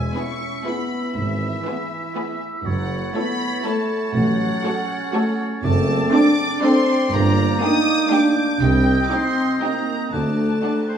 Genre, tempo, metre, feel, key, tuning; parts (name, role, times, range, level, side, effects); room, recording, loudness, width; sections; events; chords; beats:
cinematic, playful, whimsical film cue; 120 BPM; 3/4; straight; G minor from 5.6 s; A4 = 441 Hz
rich studio violin section; melody; 0.0-11.0 s; E5 to Eb6; -28 LUFS; left 1 dB
clear oboe; second line; 0.0-11.0 s; C5 to E5; -30 LUFS; equal
mellow clarinet; second line; 0.0-11.0 s; A3 to E4; -28 LUFS; equal
silver concert flute; second line; 0.0-11.0 s; F#6 to B6; -30 LUFS; right 2 dB
mellow French horn section; sustained chords; 0.0-11.0 s; E3 to Eb4; -24 LUFS; left 1 dB
mellow tuba; bass; 0.0-10.5 s; F#1 to D2; -27 LUFS; right 2 dB
rich studio cello section; bass; 0.0-10.5 s; F#2 to D3; -25 LUFS; right 2 dB
warm studio double bass section; bass; 0.0-10.5 s; F#1 to D2; -25 LUFS; right 2 dB
rich studio violin section; second line; 0.2-11.0 s; F#4 to G5; -31 LUFS; equal
rich studio viola section; accompaniment; 0.2-11.0 s; A3 to F#4; -23 LUFS; right 3 dB
wet scoring stage reverb, RT60 1.8 s; small room ambience; -18 LUFS; side -8 dB against mid
0.0-11.0 A section
0.0 E; 1.2 E/G#; 2.7 F#m7; 4.2 F#m/A; 5.6 D7/F#; 7.1 Gm; 8.6 Cm; 10.1 D
0.16 0.66 | 1.16 1.66 2.16 | 2.66 3.15 3.65 | 4.15 4.65 5.14 | 5.64 6.13 6.63 | 7.13 7.62 8.12 | 8.62 9.12 9.62 | 10.12 10.63